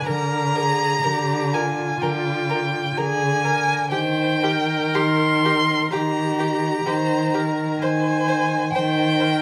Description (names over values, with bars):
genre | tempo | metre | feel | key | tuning
classical, slow romantic movement for string quartet | 56-65 BPM | 4/4 | rubato | Eb major | A4 = 440 Hz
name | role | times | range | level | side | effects
warm violin | second line | 0.0-9.4 s | G5 to C6 | -25 LUFS | equal | none
rich viola | accompaniment | 0.0-9.4 s | F4 to C5 | -30 LUFS | equal | none
warm violin | melody | 0.1-9.3 s | G4 to C5 | -32 LUFS | equal | none
warm cello | bass | 0.1-9.4 s | D3 to Eb3 | -25 LUFS | equal | none
room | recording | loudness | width
moderate recital hall reverb, RT60 1.5 s | none | -21 LUFS | mono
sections
0.0-9.4 A section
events
none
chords
0.1 Bb7/D; 3.9 Eb; 7.8 Ab/Eb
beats
| 0.07 1.04 2.02 2.97 | 3.91 4.95 5.92 6.85 | 7.80 8.74